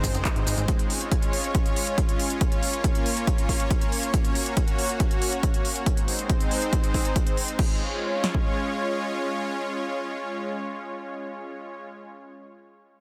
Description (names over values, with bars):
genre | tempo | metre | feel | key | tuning
uplifting trance | 139 BPM | 4/4 | straight | Db major | A4 = 437 Hz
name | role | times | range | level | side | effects
supersaw pad | sustained chords | 0.0-11.8 s | Ab3 to Db5 | -31 LUFS | equal | sidechain pumping
plucky analog bass | bass | 0.0-0.7 s | Gb1 to Ab1 | -29 LUFS | equal | sidechain pumping
punchy analog drum machine | drums | 0.0-8.4 s | kick drum, snare drum | -26 LUFS | equal | none
techno drum kit | drums | 0.0-7.7 s | crash cymbal, handclaps, hi-hat | -34 LUFS | equal | sidechain pumping on hats, sidechain pumping on cymbals
maracas | percussion | 0.0-0.7 s | none | -36 LUFS | equal | none
room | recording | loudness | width
light reverb | dense, heavily limited modern master | -25 LUFS | mono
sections
0.0-7.6 A section; 7.6-11.0 B section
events
none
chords
0.0 Ab; 0.7 Db; 2.4 Bbm; 4.1 Gb; 5.9 Ab; 7.6 Db